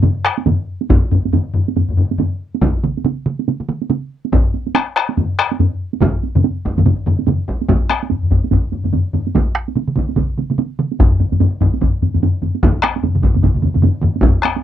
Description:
japanese traditional, taiko drum ensemble; 138-150 BPM; 4/4; swing 60% on 16ths
solo taiko drums; percussion; 0.0-14.6 s; -21 LUFS; right 12 dB
taiko ensemble; percussion; 0.0-14.5 s; -16 LUFS; left 2 dB
taiko ensemble; percussion; 0.0-14.1 s; -20 LUFS; right 3 dB
taiko ensemble; percussion; 0.9-14.3 s; -16 LUFS; equal
moderate booth ambience, RT60 0.3 s; dry, close 1970s-style studio recording; -14 LUFS; side -11 dB against mid
0.0-7.7 A section; 7.7-14.6 B section
speeding up 0.0-14.6
0.03 0.46 | 0.90 1.33 1.76 2.19 | 2.62 3.05 3.48 3.90 | 4.33 4.75 5.17 5.60 | 6.02 6.44 6.86 7.28 | 7.69 8.11 8.53 8.94 | 9.35 9.77 10.18 10.59 | 11.00 11.40 11.81 12.22 | 12.62 13.03 13.43 13.83 | 14.23 14.63

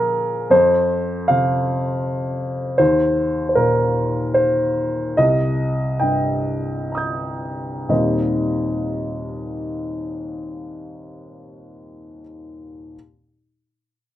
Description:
neoclassical minimalist piano; 60-81 BPM; 3/4; rubato; Eb major; A4 = 443 Hz
warm baby grand piano; solo; 0.0-13.0 s; C2 to G6; -18 LUFS; equal
light reverb; rough home demo mix; -18 LUFS; side -13 dB against mid
0.0-7.9 A section; 7.9-10.7 B section
slowing down 1.7-7.9
0.0 Bb5; 0.5 F5; 2.8 Eb5; 5.2 Cm7; 7.9 Eb6
| 0.51 1.28 2.04 | 2.79 3.56 4.34 | 5.17 6.01 6.91 | 7.89 8.85 9.80

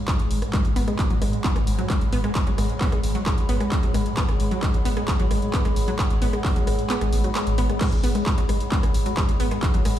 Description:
driving peak-time techno; 132 BPM; 4/4; straight; G# minor; A4 = 440 Hz
swarming drone; drone; 0.0-10.0 s; G#2 to G#3; -30 LUFS; left 1 dB; built-in reverb, sidechain pumping
warbly tape-like pad; texture; 0.0-10.0 s; G#4 to B5; -32 LUFS; left 1 dB; chorus, built-in reverb, sidechain pumping
electronic kick drum; drums; 0.1-9.7 s; -22 LUFS; equal; overdrive
techno drum kit; drums; 0.1-10.0 s; crash cymbal, handclaps, hi-hat, rim click; -30 LUFS; equal; overdrive
saturated sub bass; bass; 0.2-10.0 s; G#1; -25 LUFS; equal; tube saturation, sidechain pumping, low-pass filter
wide unison pluck; riff; 0.5-9.9 s; F#3 to B3; -29 LUFS; equal; sidechain pumping, tape echo
light reverb, digital ambience; played on a big sound system in a bare room, large studio reverb; -20 LUFS; side -11 dB against mid
0.0-7.8 A section; 7.8-10.0 B section
kick drops out 6.9-7.8; drop 7.8-10.0
0.0 G#m
0.08 | 0.54 0.99 1.44 1.90 | 2.35 2.81 3.26 3.72 | 4.17 4.63 5.08 5.54 | 5.99 6.44 6.90 7.35 | 7.81 8.26 8.72 9.17 | 9.63

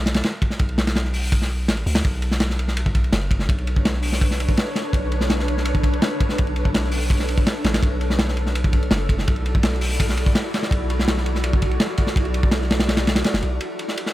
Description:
drum and bass, jungle; 166 BPM; 4/4; straight; B minor; A4 = 440 Hz
long sustained 808-style bass; bass; 0.0-13.6 s; F#1 to D2; -23 LUFS; equal; tube saturation
crunchy breakbeat drum kit; drums; 0.1-14.1 s; hi-hat, kick drum, ride cymbal, snare drum; -20 LUFS; equal; high-pass filter on kick, high-pass filter on cymbals, high-pass filter on hats, high-pass filter on snare, high-pass filter on room
granular cloud pad; sustained chords; 3.4-14.1 s; D4 to D5; -28 LUFS; equal; built-in reverb
studio ambience; -18 LUFS; side -15 dB against mid
0.0-13.6 A section
kick drops out 12.9-13.6
0.0 N.C.; 2.0 Bm9; 7.8 Dadd9; 13.6 Bm9
0.24 | 0.60 0.96 1.32 1.69 | 2.05 2.41 2.77 3.13 | 3.49 3.85 4.21 4.58 | 4.94 5.30 5.66 6.02 | 6.38 6.75 7.11 7.47 | 7.83 8.19 8.55 8.91 | 9.28 9.64 10.00 10.36 | 10.72 11.08 11.44 11.80 | 12.17 12.53 12.89 13.25 | 13.61 13.97

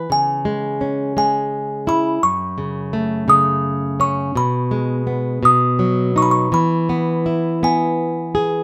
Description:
children's music, lullaby; 56 BPM (dotted quarters); 6/8; rubato; E major; A4 = 440 Hz
music box; melody; 0.0-8.6 s; G#5 to D#6; -20 LUFS; equal
flamenco guitar; accompaniment; 0.0-8.6 s; F#2 to G#4; -21 LUFS; equal
moderate studio reverb, RT60 0.6 s; -18 LUFS; mono
0.0-8.6 A section
0.1 C#m; 2.2 F#m; 4.4 G#m/B; 5.4 B; 6.5 E
| 0.10 1.16 | 2.22 3.28 | 4.36 5.43 | 6.53 7.62

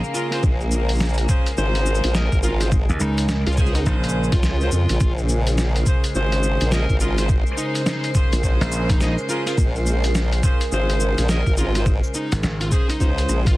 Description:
glitch hop; 105 BPM; 4/4; swing 62% on 16ths; Bb minor; A4 = 439 Hz
warm studio string section; sustained chords; 0.0-13.6 s; Db3 to C5; -29 LUFS; equal; vintage 12-bit sampler grit, sidechain pumping
boom bap sampler-style drum kit; drums; 0.0-13.6 s; hi-hat, rim click, shaker, snare drum; -27 LUFS; equal
warbly tape-like pad; texture; 0.0-13.6 s; Bb4 to Ab5; -32 LUFS; right 2 dB; chorus, built-in reverb, sidechain pumping
fuzz lead guitar; melody; 0.1-13.6 s; Eb4 to Bb4; -30 LUFS; equal; distortion, dub echo
warm horn section; stabs; 0.1-13.5 s; Db4 to Eb5; -28 LUFS; equal; sidechain pumping, dub echo
formant-sweep wobble bass; bass; 0.4-13.6 s; Ab1 to F2; -20 LUFS; equal; chorus
electronic kick drum; drums; 0.4-13.6 s; -19 LUFS; equal
slap bass; bass; 2.9-4.3, 8.6-12.7 s; Ab1 to Eb2; -21 LUFS; equal
digital ambience; dense, heavily limited modern master, vinyl crackle; -18 LUFS; side -18 dB against mid
0.0-13.6 A section
0.0 Bbm7
| 0.43 1.00 1.58 2.15 | 2.72 3.29 3.86 4.43 | 5.00 5.58 6.15 6.72 | 7.29 7.86 8.43 9.01 | 9.58 10.15 10.72 11.29 | 11.86 12.43 13.01

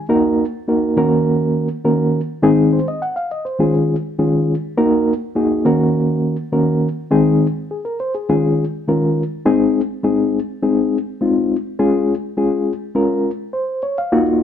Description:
soul; 103 BPM; 4/4; straight; A4 = 440 Hz
mellow reed electric piano; solo; 0.0-14.4 s; Eb3 to Gb5; -15 LUFS; left 1 dB; fast tremolo
moderate large studio reverb, RT60 0.8 s; band playing live in one room; -15 LUFS; side -9 dB against mid
0.0-9.5 A section; 9.5-14.4 B section
0.1 Ebm; 1.0 Gb/Eb; 2.4 Ab/Eb; 3.6 Db/Eb; 4.8 Ebm; 5.7 Gb/Eb; 7.1 Ab/Eb; 8.3 Db/Eb; 9.5 Ab; 11.8 Db
| 0.10 0.68 1.27 1.85 | 2.44 3.02 3.61 4.19 | 4.78 5.36 5.95 6.53 | 7.12 7.70 8.28 8.87 | 9.45 10.04 10.62 11.20 | 11.79 12.37 12.95 13.54 | 14.12

